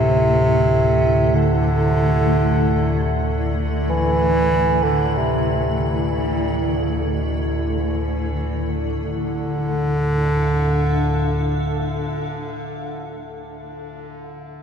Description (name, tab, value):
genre	dark ambient drone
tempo	free time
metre	none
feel	none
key	D minor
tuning	A4 = 441 Hz
part	clear bass clarinet	melody	0.0-12.9 s	C3 to E3	-20 LUFS	right 1 dB	tape echo
part	granular cloud pad	sustained chords	0.0-13.5 s	D3 to F5	-25 LUFS	equal	built-in reverb
part	gamelan-type bossed gongs	arpeggios	0.0-12.9 s	none	barely audible	none	none
part	deep rumbling drone	drone	0.0-12.9 s	D2 to A2	-23 LUFS	left 1 dB	built-in reverb
room	wet cathedral reverb, RT60 7.0 s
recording	none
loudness	-17 LUFS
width	side -7 dB against mid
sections	0.0-9.0 A section; 9.0-14.1 B section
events	none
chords	0.0 Am/D; 9.0 Dm